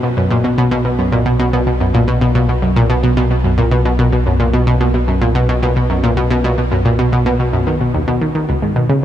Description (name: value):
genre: ambient, sequencer-driven space music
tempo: 110 BPM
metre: 4/4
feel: straight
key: unclear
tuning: A4 = 441 Hz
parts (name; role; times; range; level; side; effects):
- analog pluck; riff; 0.0-9.0 s; Db2 to D#3; -13 LUFS; equal; chorus, tape echo
- warm sub bass; bass; 0.0-9.0 s; B1 to Db2; -19 LUFS; equal; none
room: moderate huge ambient reverb, RT60 7.2 s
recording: cassette tape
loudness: -12 LUFS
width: side -11 dB against mid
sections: 0.0-9.0 A section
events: none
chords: 0.0 B5; 8.5 Db5